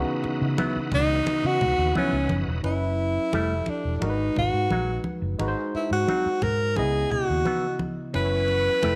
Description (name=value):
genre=lush 1970s-style soul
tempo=87 BPM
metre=4/4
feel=straight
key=C# minor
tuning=A4 = 439 Hz
part: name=barky tine electric piano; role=accompaniment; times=0.0-9.0 s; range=C#3 to D#5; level=-33 LUFS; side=equal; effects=overdrive
part: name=bright tonewheel organ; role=sustained chords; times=0.0-2.6, 8.1-9.0 s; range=E3 to G4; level=-38 LUFS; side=equal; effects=slow rotary speaker, overdrive, chorus vibrato
part: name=vintage muted fingered electric bass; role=bass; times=0.0-9.0 s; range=E1 to C#3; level=-30 LUFS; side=equal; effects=none
part: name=congas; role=percussion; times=0.2-9.0 s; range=none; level=-34 LUFS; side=equal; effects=none
part: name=electric guitar with an envelope filter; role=riff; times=0.6-9.0 s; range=E3 to G4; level=-33 LUFS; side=equal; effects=none
part: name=breathy tenor saxophone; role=melody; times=0.9-9.0 s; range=C#4 to B4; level=-27 LUFS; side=equal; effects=none
room=moderate echo chamber reverb, RT60 1.5 s, small room reverb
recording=none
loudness=-25 LUFS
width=mono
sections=0.0-2.6 A section; 2.6-9.0 B section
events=none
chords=0.0 C#m11; 2.6 F#7sus4; 3.3 Fmaj9; 4.0 G#m9; 5.4 G#7; 6.8 C#m9; 8.1 F#7sus4